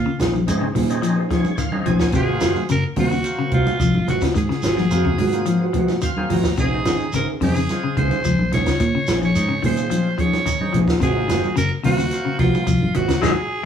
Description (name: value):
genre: afrobeat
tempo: 108 BPM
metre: 4/4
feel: straight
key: Bb minor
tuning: A4 = 440 Hz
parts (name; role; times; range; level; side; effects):
- raspy alto saxophone; melody; 0.0-13.7 s; F4 to Db5; -25 LUFS; right 2 dB; none
- clean electric guitar; arpeggios; 0.0-13.3 s; C3 to Ab3; -23 LUFS; left 5 dB; none
- fingered electric bass; bass; 0.0-13.3 s; Gb1 to Bb2; -23 LUFS; equal; none
- mellow electric guitar; stabs; 0.2-13.3 s; Bb3 to C5; -25 LUFS; right 4 dB; spring reverb
- compact cocktail drum kit; drums; 0.2-13.4 s; hi-hat, kick drum, snare drum; -26 LUFS; equal; none
- congas; percussion; 0.2-13.4 s; none; -27 LUFS; right 1 dB; none
- shekere; percussion; 0.2-13.4 s; none; -32 LUFS; right 1 dB; none
- overdriven tonewheel organ; accompaniment; 0.5-13.3 s; Gb3 to Bb5; -29 LUFS; equal; slow rotary speaker
room: moderate large studio reverb, RT60 0.9 s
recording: band playing live in one room, small room ambience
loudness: -17 LUFS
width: side -8 dB against mid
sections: 0.0-13.7 A section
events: tonewheel organ fill 1.0-2.1, 5.8-6.6; band accent 13.2-13.7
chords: 0.0 Bbm11; 2.1 Ab13; 6.6 Bbm11; 11.0 Ab13